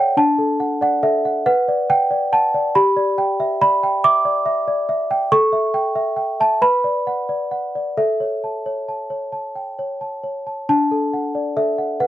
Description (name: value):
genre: classical, lullaby for celesta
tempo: 43-47 BPM (dotted quarters)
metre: 6/8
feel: straight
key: D major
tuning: A4 = 438 Hz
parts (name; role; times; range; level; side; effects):
- worn celesta; solo; 0.0-12.1 s; D4 to D6; -17 LUFS; equal; none
room: little or no reverb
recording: dry, close 1970s-style studio recording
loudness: -17 LUFS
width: side -13 dB against mid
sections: 0.0-10.7 A section; 10.7-12.1 B section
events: none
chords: 0.2 D; 1.5 Bm; 2.8 Em7/G; 5.3 A7; 6.6 Bm; 8.0 A; 10.7 D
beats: | 0.17 1.46 | 2.75 4.04 | 5.31 6.62 | 7.97 9.34 | 10.70 12.02